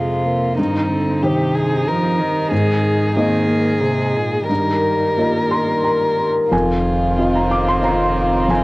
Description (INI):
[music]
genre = neoclassical piano and strings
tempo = 92 BPM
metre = 3/4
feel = rubato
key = unclear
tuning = A4 = 440 Hz
[part]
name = dark violin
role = melody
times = 0.0-8.6 s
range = Eb4 to Bb4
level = -20 LUFS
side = left 1 dB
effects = cassette tape
[part]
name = warm cello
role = second line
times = 0.0-8.6 s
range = Bb2 to F3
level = -24 LUFS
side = right 2 dB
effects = cassette tape
[part]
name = dark viola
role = accompaniment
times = 0.0-8.6 s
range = G3 to Eb4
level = -26 LUFS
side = right 2 dB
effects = cassette tape
[part]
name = felt-muted upright piano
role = accompaniment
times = 0.0-8.6 s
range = F2 to D6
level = -19 LUFS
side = equal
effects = cassette tape
[part]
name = concert harp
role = arpeggios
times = 0.0-8.6 s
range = C4 to Bb5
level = -25 LUFS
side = left 1 dB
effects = none
[part]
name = pure sine sub bass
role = bass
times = 6.5-8.6 s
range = F1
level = -25 LUFS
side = equal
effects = none
[sound]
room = moderate booth ambience, RT60 0.2 s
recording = home recording on cassette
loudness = -15 LUFS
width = side -21 dB against mid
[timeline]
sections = 0.0-6.5 A section; 6.5-8.6 B section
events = none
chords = 0.0 Fm; 0.6 Cm/G; 2.5 Absus2; 4.5 Ebadd9/G; 6.5 Fm7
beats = | 0.58 1.23 1.87 | 2.51 3.16 3.81 | 4.49 5.17 5.85 | 6.52 7.18 7.83 | 8.50